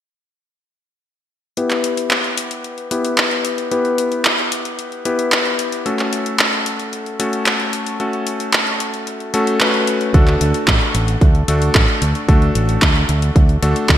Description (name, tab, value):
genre	italo disco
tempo	112 BPM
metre	4/4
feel	straight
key	E dorian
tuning	A4 = 440 Hz
part	bright electric grand piano	stabs	1.6-14.0 s	A3 to B4	-20 LUFS	left 2 dB	low-pass filter, shimmer reverb, ping-pong delay
part	house drum kit	drums	1.6-14.0 s	handclaps, hi-hat	-18 LUFS	equal	small room ambience, gated reverb
part	fingered electric bass with an envelope filter	bass	10.1-14.0 s	A1 to D2	-17 LUFS	equal	tube saturation
part	electronic kick drum	drums	10.1-14.0 s	none	-13 LUFS	equal	small room ambience
room	moderate lush hall reverb, RT60 1.8 s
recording	bright 1980s-style digital production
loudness	-14 LUFS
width	side -11 dB against mid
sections	1.6-14.0 A section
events	filter sweep on electric grand piano 1.6-14.0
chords	1.6 Em; 5.9 F#m; 10.1 D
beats	| 1.57 2.11 2.64 3.18 | 3.71 4.25 4.79 5.32 | 5.86 6.39 6.93 7.46 | 8.00 8.54 9.07 9.61 | 10.14 10.68 11.21 11.75 | 12.29 12.82 13.36 13.89